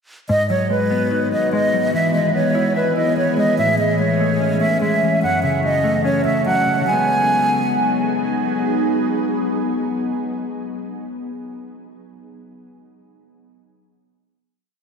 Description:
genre	hip hop, trap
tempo	146 BPM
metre	4/4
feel	half-time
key	G# phrygian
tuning	A4 = 440 Hz
part	breathy mellow silver concert flute	melody	0.3-8.1 s	B4 to G#5	-19 LUFS	right 1 dB	tape echo
part	mellow electric guitar	accompaniment	0.3-11.3 s	F#2 to E5	-22 LUFS	left 3 dB	wide subtle chorus
part	ethereal airy pad	sustained chords	1.0-10.9 s	D#3 to A4	-24 LUFS	right 1 dB	ensemble chorus, built-in reverb, phaser
room	wet cathedral reverb, RT60 5.1 s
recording	dreamy mix soaked in reverb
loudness	-16 LUFS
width	side -6 dB against mid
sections	0.3-6.9 breakdown; 6.9-10.2 final chord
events	none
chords	0.3 G#m7; 1.9 E; 3.6 Amaj7; 5.2 F#m; 6.9 G#m7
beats	| 0.29 0.70 1.12 1.53 | 1.94 2.35 2.76 3.17 | 3.58 3.99 4.40 4.81 | 5.22 5.64 6.05 6.46 | 6.87 7.28 7.69 8.10 | 8.51 8.92 9.34 9.75

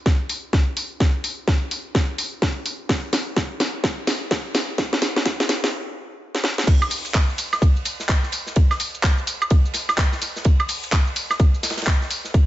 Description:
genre	house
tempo	127 BPM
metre	4/4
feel	swing 62% on 16ths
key	none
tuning	none
part	electronic kick drum	drums	0.1-12.5 s	none	-18 LUFS	equal	studio reverb
part	garage drum kit	drums	0.1-12.5 s	crash cymbal, handclaps, hi-hat, shaker, snare drum, woodblock	-22 LUFS	equal	studio reverb
part	modern studio drum kit	drums	6.7-12.5 s	hi-hat, ride cymbal, snare drum	-32 LUFS	right 1 dB	sidechain pumping on cymbals, high-pass filter on cymbals, studio reverb, sidechain pumping on hats, high-pass filter on hats, high-pass filter on snare, high-pass filter on room
room	light reverb, studio reverb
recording	high-pass filter, nothing above 7.8 kHz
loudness	-19 LUFS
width	side -14 dB against mid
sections	0.0-6.7 A section; 6.7-12.5 B section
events	build-up 0.0-6.7; drum fill 0.0-5.7, 6.3-6.7; filter sweep 0.0-6.7; stop 5.7-6.7; drop 6.7-12.5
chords	none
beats	0.06 0.53 | 1.00 1.48 1.95 2.42 | 2.89 3.37 3.84 4.31 | 4.78 5.25 5.73 6.20 | 6.67 7.14 7.62 8.09 | 8.56 9.04 9.51 9.98 | 10.45 10.92 11.40 11.87 | 12.34

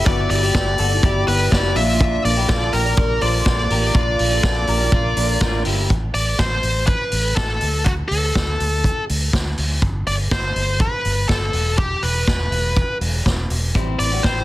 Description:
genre	jangly indie pop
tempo	122 BPM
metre	4/4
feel	straight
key	unclear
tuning	A4 = 435 Hz
part	high-gain lead guitar	melody	0.0-14.4 s	F#4 to E5	-22 LUFS	equal	distortion, plate reverb, digital delay
part	picked steel-string acoustic guitar	accompaniment	0.0-5.9, 13.7-14.4 s	A2 to D5	-29 LUFS	right 4 dB	none
part	warbly lo-fi synth keys	accompaniment	0.0-5.9 s	Bb3 to A4	-27 LUFS	right 1 dB	chorus
part	twelve-string electric guitar	arpeggios	0.0-5.9, 13.8-14.4 s	B3 to D5	-25 LUFS	left 6 dB	plate reverb
part	vintage muted fingered electric bass	bass	0.0-14.4 s	E1 to D2	-22 LUFS	equal	none
part	vintage drum kit	drums	0.1-14.4 s	hi-hat, kick drum, snare drum	-21 LUFS	equal	soft clipping on kick
room	light reverb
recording	dense, heavily limited modern master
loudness	-16 LUFS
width	side -16 dB against mid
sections	0.0-5.9 A section; 5.9-14.4 B section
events	none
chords	0.0 G6; 1.8 Bb; 5.9 Am; 7.6 D5; 9.8 G; 11.5 E5; 13.8 Am7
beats	| 0.07 0.55 1.04 1.52 | 2.01 2.49 2.98 3.47 | 3.95 4.44 4.93 5.42 | 5.90 6.39 6.88 7.37 | 7.86 8.35 8.84 9.33 | 9.82 10.31 10.81 11.30 | 11.79 12.28 12.77 13.26 | 13.75 14.24

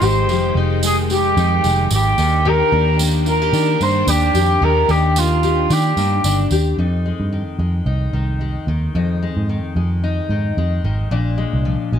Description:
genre	indie pop, bedroom pop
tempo	111 BPM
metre	4/4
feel	swing 55% on 16ths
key	F dorian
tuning	A4 = 440 Hz
part	dark cor anglais	melody	0.0-6.5 s	F4 to C5	-18 LUFS	right 1 dB	lush chorus
part	fingerpicked steel-string acoustic guitar	accompaniment	0.0-12.0 s	F2 to G4	-22 LUFS	left 5 dB	wide subtle chorus, vibrato effect
part	string machine, violas	sustained chords	0.0-6.7 s	Eb3 to G5	-25 LUFS	right 1 dB	ensemble chorus
part	vintage muted picked electric bass	bass	0.0-12.0 s	F1 to Eb3	-18 LUFS	right 1 dB	none
part	tambourine	percussion	0.0-6.6 s	none	-27 LUFS	right 7 dB	none
room	light reverb, small room ambience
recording	none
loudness	-15 LUFS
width	side -8 dB against mid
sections	0.0-6.8 A section; 6.8-12.0 B section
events	none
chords	0.0 Fm9; 2.2 Ebmaj7; 6.8 Fm7; 11.1 Bb7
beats	| 0.29 0.83 1.37 1.91 | 2.45 3.00 3.54 4.08 | 4.62 5.16 5.70 6.24 | 6.78 7.32 7.87 8.41 | 8.95 9.49 10.03 10.57 | 11.11 11.65

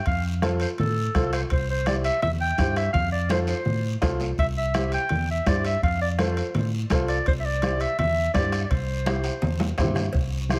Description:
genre	latin, cumbia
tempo	167 BPM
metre	4/4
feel	straight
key	C major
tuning	A4 = 441 Hz
part	warm clarinet	melody	0.0-10.6 s	A4 to G5	-30 LUFS	equal	tape echo
part	fingered electric bass	bass	0.1-10.6 s	C2 to A2	-29 LUFS	equal	none
part	bombo	percussion	0.1-10.6 s	none	-30 LUFS	equal	none
part	congas	percussion	0.1-10.6 s	none	-32 LUFS	equal	none
part	guiro	percussion	0.1-10.6 s	none	-43 LUFS	equal	none
part	timbales and cowbell	percussion	0.1-10.3 s	none	-40 LUFS	equal	none
part	warm upright piano	accompaniment	0.4-10.6 s	E4 to C5	-33 LUFS	equal	none
room	light reverb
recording	none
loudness	-24 LUFS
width	mono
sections	0.0-10.2 A section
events	drum fill 3.3-4.4, 9.1-10.2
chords	0.1 F; 1.5 C; 2.9 F; 4.4 C; 5.8 F; 7.3 C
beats	| 0.07 0.43 0.79 1.15 | 1.51 1.87 2.23 2.59 | 2.95 3.31 3.67 4.03 | 4.39 4.75 5.11 5.47 | 5.83 6.19 6.55 6.91 | 7.27 7.63 7.99 8.35 | 8.71 9.07 9.43 9.79 | 10.15 10.51

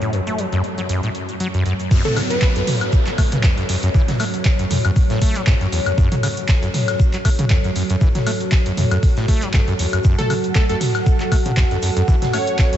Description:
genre	acid house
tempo	118 BPM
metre	4/4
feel	swing 55% on 16ths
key	F# minor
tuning	A4 = 441 Hz
part	dark analog pad	sustained chords	0.0-12.8 s	F#3 to F#5	-24 LUFS	right 1 dB	chorus, sidechain pumping
part	acid bass, saw	riff	0.0-12.8 s	E2 to A3	-22 LUFS	equal	overdrive, ping-pong delay
part	punchy analog drum machine	drums	0.0-12.8 s	crash cymbal, handclaps, hi-hat, shaker, toms, woodblock	-23 LUFS	equal	overdrive
part	electronic kick drum	drums	1.9-12.7 s	none	-16 LUFS	equal	none
part	shaker and snare drum	drums	1.9-12.7 s	none	-37 LUFS	equal	none
part	downlifter	sound effects	1.9-6.0 s	none	-29 LUFS	right 1 dB	none
part	plucky unison lead	melody	2.0-2.8, 10.2-12.8 s	A4 to C#5	-26 LUFS	equal	analog delay
room	light reverb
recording	nothing above 7.9 kHz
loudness	-16 LUFS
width	side -11 dB against mid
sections	0.0-1.9 A section; 1.9-12.8 B section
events	drop 1.9-12.8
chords	0.0 F#m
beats	0.39 0.89 1.40 | 1.91 2.42 2.93 3.44 | 3.94 4.45 4.96 5.47 | 5.98 6.49 7.00 7.50 | 8.01 8.52 9.03 9.54 | 10.05 10.55 11.06 11.57 | 12.08 12.59

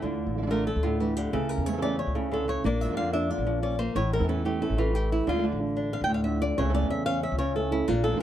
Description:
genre	flamenco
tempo	183 BPM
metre	4/4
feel	straight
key	unclear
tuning	A4 = 436 Hz
part	flamenco guitar	melody	0.0-8.2 s	A2 to G5	-28 LUFS	left 1 dB	none
part	flamenco guitar	stabs	0.0-8.2 s	C#3 to A4	-32 LUFS	right 6 dB	none
part	upright bass	bass	0.0-8.2 s	A1 to F2	-30 LUFS	equal	none
room	light reverb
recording	dark, warm production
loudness	-25 LUFS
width	side -11 dB against mid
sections	0.0-8.2 A section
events	nylon-string guitar solo 0.0-8.2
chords	0.0 Dm; 1.3 A/C#; 2.7 Bb; 4.0 A; 5.3 Dm; 6.6 A/C#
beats	| 0.03 0.36 0.68 1.01 | 1.34 1.67 2.00 2.32 | 2.65 2.98 3.31 3.64 | 3.96 4.29 4.62 4.95 | 5.28 5.60 5.93 6.26 | 6.58 6.91 7.24 7.56 | 7.89 8.22

